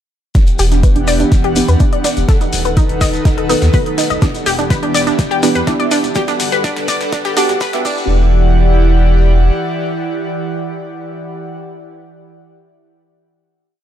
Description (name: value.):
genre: progressive house.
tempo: 124 BPM.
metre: 4/4.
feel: straight.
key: E minor.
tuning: A4 = 441 Hz.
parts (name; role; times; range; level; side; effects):
airy breathy pad; sustained chords; 0.3-11.6 s; D#3 to F#5; -19 LUFS; right 1 dB; chorus, sidechain pumping.
analog pluck; arpeggios; 0.3-8.3 s; D4 to D#5; -18 LUFS; equal; chorus, sidechain pumping, digital delay.
deep mellow chord stab; stabs; 0.3-11.6 s; B3 to F#5; -21 LUFS; right 1 dB; chorus, phaser, sidechain pumping, digital delay.
electronic kick drum; drums; 0.3-8.0 s; none; -13 LUFS; equal; overdrive.
shekere; percussion; 0.3-8.1 s; none; -26 LUFS; left 6 dB; none.
deep house drum kit; drums; 0.4-8.0 s; crash cymbal, hi-hat, snare drum; -24 LUFS; left 2 dB; high-pass filter on snare, high-pass filter on hats, high-pass filter on cymbals, high-pass filter on room.
saturated sub bass; bass; 0.6-9.5 s; D#1 to G2; -14 LUFS; equal; sidechain pumping.
room: light reverb, digital ambience.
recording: high-pass filter.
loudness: -12 LUFS.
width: side -10 dB against mid.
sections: 0.3-8.1 build; 8.1-12.0 final hit.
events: build-up 0.3-8.1; drum fill 0.3-8.1; filter sweep on synth pluck 0.3-8.1; filter sweep on synth stab 0.3-8.1; filter sweep 0.3-8.1.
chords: 0.3 Em7; 2.3 B7/D#; 4.2 Em7; 6.2 Gmaj7; 7.8 Em7.